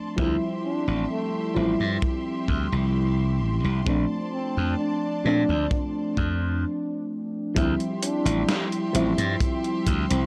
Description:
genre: vaporwave.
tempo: 65 BPM.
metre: 4/4.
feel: straight.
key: unclear.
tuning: A4 = 441 Hz.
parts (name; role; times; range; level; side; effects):
mellow FM electric piano; accompaniment; 0.0-10.3 s; F3 to E4; -29 LUFS; equal; subtle chorus, tape echo.
clear symphonic string section; sustained chords; 0.0-10.3 s; G4 to C6; -40 LUFS; equal; vintage 12-bit sampler grit.
glassy slap bass; bass; 0.2-10.3 s; A1 to Bb2; -27 LUFS; equal; none.
kick drum; drums; 0.2-10.1 s; none; -29 LUFS; equal; none.
breathy flugelhorn; melody; 0.6-10.2 s; A3 to D4; -34 LUFS; equal; tape echo.
gated 80s digital drum machine; drums; 7.6-10.3 s; hi-hat, snare drum; -31 LUFS; equal; gated reverb, gated reverb snare.
room: light reverb.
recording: dry, gritty hardware recording.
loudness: -25 LUFS.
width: mono.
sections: 0.0-7.6 A section; 7.6-10.3 B section.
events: stop 6.6-7.6.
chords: 0.2 Dm11 (rootless); 3.9 Bbmaj9 (rootless); 7.6 Dm11.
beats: | 0.18 1.10 2.02 2.95 | 3.87 4.79 5.72 6.64 | 7.56 8.49 9.41.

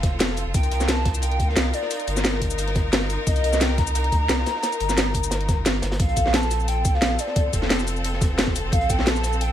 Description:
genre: liquid drum and bass.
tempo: 176 BPM.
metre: 4/4.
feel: straight.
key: Bb major.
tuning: A4 = 439 Hz.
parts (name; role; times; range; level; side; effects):
hollow clarinet-like synth lead; melody; 0.0-9.5 s; D5 to Bb5; -27 LUFS; equal; analog chorus, tape echo.
bright studio string section; sustained chords; 0.0-9.5 s; C4 to Bb4; -30 LUFS; left 3 dB; sidechain pumping.
saturated sub bass; bass; 0.0-9.5 s; F1 to D2; -25 LUFS; equal; tube saturation.
crunchy breakbeat drum kit; drums; 0.0-9.5 s; hi-hat, snare drum; -33 LUFS; equal; high-pass filter on hats, high-pass filter on snare, high-pass filter on room.
drum and bass drum kit; drums; 0.0-9.5 s; cabasa, hi-hat, snare drum; -24 LUFS; equal; none.
electronic kick drum; drums; 0.0-9.0 s; none; -23 LUFS; equal; none.
room: studio reverb.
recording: none.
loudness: -20 LUFS.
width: side -11 dB against mid.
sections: 0.0-6.0 A section; 6.0-9.5 A section.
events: drop 0.0-6.0, 6.0-9.5.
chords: 0.0 Bbmaj7(no3) (rootless); 0.5 Cm7; 6.0 Bbmaj7(no3).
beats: 0.20 | 0.54 0.88 1.23 1.57 | 1.91 2.25 2.59 2.93 | 3.27 3.61 3.95 4.29 | 4.63 4.97 5.32 5.66 | 6.00 6.34 6.68 7.02 | 7.36 7.70 8.04 8.38 | 8.72 9.07 9.41.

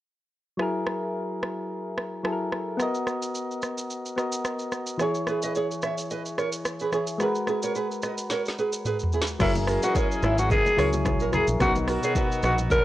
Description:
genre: afrobeats.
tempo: 109 BPM.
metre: 4/4.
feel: swing 55% on 16ths.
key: unclear.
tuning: A4 = 444 Hz.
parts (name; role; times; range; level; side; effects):
soft electric-piano-like synth keys; accompaniment; 0.6-12.8 s; B2 to D#5; -29 LUFS; left 2 dB; chorus.
afro-pop drum kit; drums; 0.6-12.8 s; crash cymbal, hi-hat, kick drum, rim click, shaker, snare drum, toms; -30 LUFS; equal; none.
nylon-string guitar; riff; 5.0-12.8 s; E4 to E5; -29 LUFS; right 4 dB; analog delay.
growling alto saxophone; melody; 9.4-12.8 s; E4 to A#4; -25 LUFS; left 1 dB; analog delay.
mellow horn section; second line; 9.4-12.8 s; D#3 to G#4; -33 LUFS; equal; none.
fingered electric bass; bass; 9.4-12.8 s; F#1 to C#2; -27 LUFS; equal; none.
congas and bongos; percussion; 9.4-12.8 s; none; -32 LUFS; equal; none.
room: small room ambience.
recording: dry, gritty hardware recording, cassette tape.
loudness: -24 LUFS.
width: side -15 dB against mid.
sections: 0.6-9.4 A section; 9.4-12.8 B section.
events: drum fill 8.3-9.4.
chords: 0.6 F#9; 2.8 Bmaj7; 5.0 E6; 7.2 G#m9; 9.4 F#9; 11.6 Bmaj7.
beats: | 0.59 1.15 1.70 2.25 | 2.80 3.35 3.90 4.45 | 5.00 5.55 6.10 6.65 | 7.20 7.75 8.30 8.85 | 9.40 9.95 10.50 11.05 | 11.60 12.15 12.71.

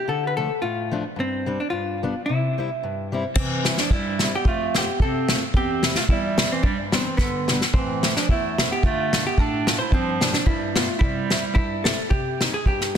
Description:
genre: alpine folk, alpine dance band.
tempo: 110 BPM.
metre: 2/4.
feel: swing 54% on 8ths.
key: C major.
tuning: A4 = 440 Hz.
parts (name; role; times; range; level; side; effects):
vintage hollow-body jazz guitar; melody; 0.0-13.0 s; B3 to C5; -27 LUFS; equal; tape echo.
fingerpicked steel-string acoustic guitar; accompaniment; 0.1-13.0 s; E2 to F4; -28 LUFS; left 3 dB; none.
warm clarinet; second line; 3.4-11.8 s; D3 to E4; -27 LUFS; right 5 dB; none.
unplugged drum kit; drums; 3.4-13.0 s; crash cymbal, kick drum, snare drum; -22 LUFS; equal; none.
room: light reverb, small room ambience.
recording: dense, heavily limited modern master.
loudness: -20 LUFS.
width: side -8 dB against mid.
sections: 0.0-3.4 A section; 3.4-12.1 A section.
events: drum fill 7.2-7.7.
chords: 0.1 Dm; 1.2 Gsus4; 1.7 G7; 2.3 C; 4.5 F; 5.5 C/E; 6.6 G; 7.7 Am; 8.8 Dm; 9.9 G7sus4; 10.5 G7; 11.0 C; 12.1 Cm.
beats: | 0.06 0.61 | 1.16 1.71 | 2.25 2.81 | 3.36 3.91 | 4.46 5.00 | 5.54 6.09 | 6.63 7.18 | 7.73 8.28 | 8.83 9.37 | 9.91 10.46 | 11.00 11.55 | 12.10 12.65.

